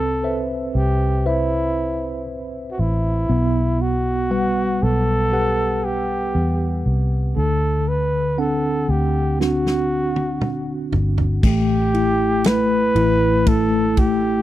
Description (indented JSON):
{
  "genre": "pop ballad",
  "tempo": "59 BPM",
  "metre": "4/4",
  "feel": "straight",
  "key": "G major",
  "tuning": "A4 = 440 Hz",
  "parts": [
    { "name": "breathy flugelhorn", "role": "melody", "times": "0.0-14.4 s", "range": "E4 to B4", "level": "-22 LUFS", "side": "equal", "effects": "none" },
    { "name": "tine electric piano", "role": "accompaniment", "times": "0.0-14.4 s", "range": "D3 to F#5", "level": "-22 LUFS", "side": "equal", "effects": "medium stereo tremolo" },
    { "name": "vintage muted fingered electric bass", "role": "bass", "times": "0.0-14.4 s", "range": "G1 to E2", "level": "-22 LUFS", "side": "equal", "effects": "none" },
    { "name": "natural country drum kit", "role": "drums", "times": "9.4-14.2 s", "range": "crash cymbal, kick drum, ride cymbal, snare drum, toms", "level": "-20 LUFS", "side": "equal", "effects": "none" }
  ],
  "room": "little or no reverb",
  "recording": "dry, close 1970s-style studio recording",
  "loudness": "-17 LUFS",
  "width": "side -14 dB against mid",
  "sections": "0.0-11.4 A section; 11.4-14.4 B section",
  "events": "drum fill 9.4-11.4",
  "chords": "0.0 Cmaj7; 3.3 Gmaj7/B; 7.4 D7; 11.4 A5"
}